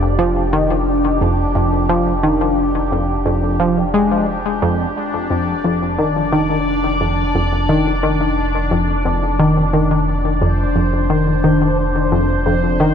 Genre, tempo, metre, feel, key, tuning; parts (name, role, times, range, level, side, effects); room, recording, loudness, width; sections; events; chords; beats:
ambient, sequencer-driven space music; 88 BPM; 4/4; straight; A4 = 438 Hz
tight sequenced synth; riff; 0.0-12.9 s; F2 to Ab3; -17 LUFS; left 1 dB; chorus, ping-pong delay
warm sub bass; bass; 0.0-12.9 s; F1; -22 LUFS; right 1 dB
bubbling stepped-filter texture; texture; 0.0-12.9 s; D4 to D5; -20 LUFS; left 1 dB; chorus, built-in reverb
moderate huge ambient reverb, RT60 8.7 s; -14 LUFS; side -8 dB against mid
0.0-12.9 A section
0.0 F5
0.19 0.87 1.55 | 2.23 2.92 3.60 4.28 | 4.96 5.64 6.33 7.01 | 7.69 8.37 9.05 9.73 | 10.42 11.10 11.78 12.46